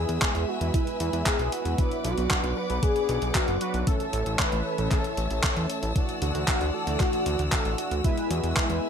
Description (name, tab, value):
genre	italo disco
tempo	115 BPM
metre	4/4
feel	straight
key	unclear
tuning	A4 = 439 Hz
part	wide unison lead	melody	0.0-8.9 s	E4 to B4	-30 LUFS	left 1 dB	analog chorus, ping-pong delay
part	warm studio string section	sustained chords	0.0-8.9 s	B4 to E6	-34 LUFS	left 3 dB	none
part	analog synth brass	stabs	0.0-8.9 s	E3 to B4	-33 LUFS	right 3 dB	chorus
part	fat analog bass	bass	0.0-8.8 s	F#1 to E2	-28 LUFS	equal	none
part	clean 12-bit digital drum machine	drums	0.1-8.8 s	handclaps, hi-hat	-30 LUFS	equal	gated reverb
part	electronic kick drum	drums	0.2-8.7 s	none	-26 LUFS	equal	none
room	moderate plate reverb, RT60 1.2 s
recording	bright 1980s-style digital production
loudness	-24 LUFS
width	side -7 dB against mid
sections	0.0-8.9 A section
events	none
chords	0.0 E; 1.8 Bm; 3.9 A; 6.0 Dadd9; 8.0 E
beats	0.22 0.74 1.26 | 1.78 2.31 2.83 3.35 | 3.87 4.39 4.91 5.44 | 5.96 6.48 7.00 7.52 | 8.04 8.57